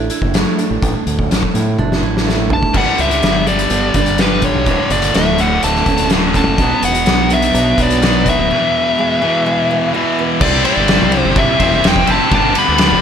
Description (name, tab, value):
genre	quiet-loud alternative rock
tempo	125 BPM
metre	4/4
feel	straight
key	unclear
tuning	A4 = 442 Hz
part	picked steel-string acoustic guitar	arpeggios	0.0-10.4 s	D2 to B4	-22 LUFS	right 6 dB	tape echo
part	growling fingered electric bass	bass	0.0-13.0 s	D1 to A2	-19 LUFS	equal	overdrive
part	oversized low-tuned drum kit	drums	0.1-12.9 s	crash cymbal, hi-hat, kick drum, ride cymbal, snare drum, toms	-16 LUFS	left 1 dB	none
part	fuzz lead guitar	melody	2.5-13.0 s	B4 to B5	-17 LUFS	left 1 dB	distortion
part	high-gain distorted guitar	riff	2.7-13.0 s	D2 to C5	-16 LUFS	left 1 dB	distortion
room	light reverb, small room ambience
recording	none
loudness	-11 LUFS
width	side -8 dB against mid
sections	0.0-2.8 A section; 2.8-10.4 B section; 10.4-13.0 C section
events	drum fill 1.8-2.8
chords	0.0 Asus4; 2.8 G; 4.7 Dmaj7; 6.6 Bm; 8.5 E; 10.4 Cadd9; 12.3 G